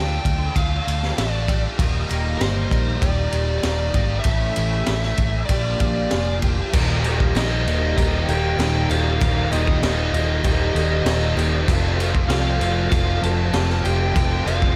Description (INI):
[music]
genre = rock, shoegaze and dream pop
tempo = 97 BPM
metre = 4/4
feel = straight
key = Eb lydian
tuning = A4 = 440 Hz
[part]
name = fuzz lead guitar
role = melody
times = 0.0-14.8 s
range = C5 to A5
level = -30 LUFS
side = equal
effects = distortion, digital delay
[part]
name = picked twelve-string acoustic guitar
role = arpeggios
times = 0.0-14.8 s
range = F4 to Bb4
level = -35 LUFS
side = equal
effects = none
[part]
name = biting overdriven guitar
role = riff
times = 0.0-14.8 s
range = Eb2 to A4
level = -31 LUFS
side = equal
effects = ensemble chorus
[part]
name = direct-recorded clean electric guitar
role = riff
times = 0.0-14.8 s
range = Eb2 to A4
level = -33 LUFS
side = equal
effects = reverse reverb
[part]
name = vintage muted fingered electric bass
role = bass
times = 0.0-14.8 s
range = Eb1 to D2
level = -25 LUFS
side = equal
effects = none
[part]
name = raw garage drum kit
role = drums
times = 0.3-14.8 s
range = crash cymbal, kick drum, ride cymbal, snare drum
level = -25 LUFS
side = equal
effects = none
[part]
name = overdriven semi-hollow guitar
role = riff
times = 6.7-14.8 s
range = Eb2 to F3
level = -30 LUFS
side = equal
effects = none
[sound]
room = small room ambience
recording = none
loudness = -20 LUFS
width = mono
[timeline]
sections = 0.0-6.7 A section; 6.7-14.8 B section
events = none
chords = 0.0 Dm; 1.8 Ebmaj7; 4.3 A7; 5.5 Bb7; 6.7 Eb; 11.7 F